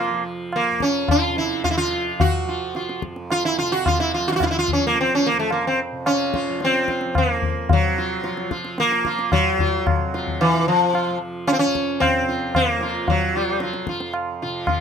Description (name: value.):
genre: indian classical, Hindustani.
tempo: 110 BPM.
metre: 5/4.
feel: straight.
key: unclear.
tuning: A4 = 440 Hz.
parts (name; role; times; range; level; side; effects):
sitar; melody; 0.0-14.8 s; E3 to Gb4; -20 LUFS; equal; none.
tanpura; drone; 0.0-14.8 s; F2 to F3; -32 LUFS; right 3 dB; none.
tabla; percussion; 0.5-14.8 s; none; -23 LUFS; left 2 dB; none.
room: moderate studio reverb, RT60 0.6 s.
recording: close, detailed microphones.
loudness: -19 LUFS.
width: side -7 dB against mid.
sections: 0.0-7.7 A section; 7.7-14.8 B section.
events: speeding up 0.0-14.8.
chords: none.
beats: 0.53 1.09 1.65 | 2.20 2.76 3.31 3.86 4.41 | 4.96 5.51 6.06 6.61 7.16 | 7.70 8.24 8.79 9.33 9.87 | 10.40 10.94 11.48 12.02 12.55 | 13.08 13.61 14.14 14.67.